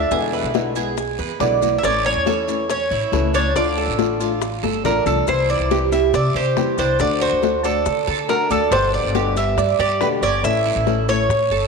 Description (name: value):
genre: latin, Cuban son and guajira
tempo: 140 BPM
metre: 4/4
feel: straight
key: D minor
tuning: A4 = 440 Hz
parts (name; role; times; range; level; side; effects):
- Cuban tres; melody; 0.0-11.7 s; A4 to E5; -21 LUFS; equal; none
- flamenco guitar; accompaniment; 0.0-11.3 s; B2 to G4; -24 LUFS; left 9 dB; none
- Cuban tres; arpeggios; 0.0-11.7 s; C#4 to E5; -23 LUFS; right 10 dB; none
- upright bass; bass; 0.0-11.7 s; G1 to D3; -25 LUFS; equal; none
- bongos; percussion; 0.1-11.7 s; none; -31 LUFS; left 11 dB; none
- congas; percussion; 0.1-11.7 s; none; -30 LUFS; left 10 dB; none
- guiro; percussion; 0.1-11.7 s; none; -34 LUFS; right 14 dB; none
- maracas; percussion; 0.1-11.7 s; none; -39 LUFS; left 15 dB; none
room: wet echo chamber reverb, RT60 2.5 s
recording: 1960s-style stereo with parts hard left and right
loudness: -16 LUFS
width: side -4 dB against mid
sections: 0.0-5.3 A section; 5.3-11.7 B section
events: drum fill 4.6-5.3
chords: 0.1 E7; 1.8 A; 3.6 Dm; 5.3 C; 7.0 D; 8.7 G; 10.4 A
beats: | 0.11 0.55 0.98 1.41 | 1.84 2.27 2.70 3.13 | 3.56 3.99 4.42 4.85 | 5.28 5.71 6.14 6.57 | 7.00 7.43 7.86 8.29 | 8.72 9.15 9.58 10.01 | 10.44 10.87 11.30